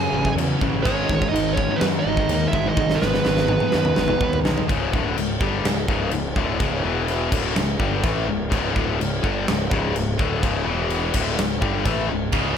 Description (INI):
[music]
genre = heavy metal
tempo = 125 BPM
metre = 4/4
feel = straight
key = C# minor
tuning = A4 = 440 Hz
[part]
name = high-gain lead guitar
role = melody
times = 0.0-4.4 s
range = B4 to A5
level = -24 LUFS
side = right 3 dB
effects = distortion, digital delay
[part]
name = high-gain lead guitar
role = second line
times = 0.0-4.4 s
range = B3 to A4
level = -30 LUFS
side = right 10 dB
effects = distortion
[part]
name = high-gain distorted guitar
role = riff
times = 0.0-4.7, 12.3-12.6 s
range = C#2 to G#3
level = -29 LUFS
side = right 14 dB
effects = distortion
[part]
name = tight distorted guitar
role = riff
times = 0.0-12.6 s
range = C#2 to A3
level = -25 LUFS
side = left 8 dB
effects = distortion
[part]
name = tight distorted guitar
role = riff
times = 0.0-12.6 s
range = C#2 to A3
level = -29 LUFS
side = right 2 dB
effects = distortion
[part]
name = fuzz picked electric bass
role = bass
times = 0.0-12.6 s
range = C#1 to F#2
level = -26 LUFS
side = right 1 dB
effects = overdrive
[part]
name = big rock drum kit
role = drums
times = 0.2-12.4 s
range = crash cymbal, kick drum, snare drum, toms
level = -24 LUFS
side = equal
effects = none
[sound]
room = studio ambience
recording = none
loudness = -19 LUFS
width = side -8 dB against mid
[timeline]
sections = 0.0-4.7 A section; 4.7-12.6 B section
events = drum fill 2.8-4.7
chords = 0.0 F#m/A; 0.8 G#m; 4.7 C#5; 6.8 E5; 7.3 C#m; 10.7 E5; 11.1 C#m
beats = 0.37 | 0.85 1.33 1.81 2.29 | 2.77 3.25 3.73 4.21 | 4.69 5.17 5.64 6.12 | 6.60 7.08 7.56 8.04 | 8.51 8.99 9.47 9.95 | 10.42 10.90 11.38 11.86 | 12.33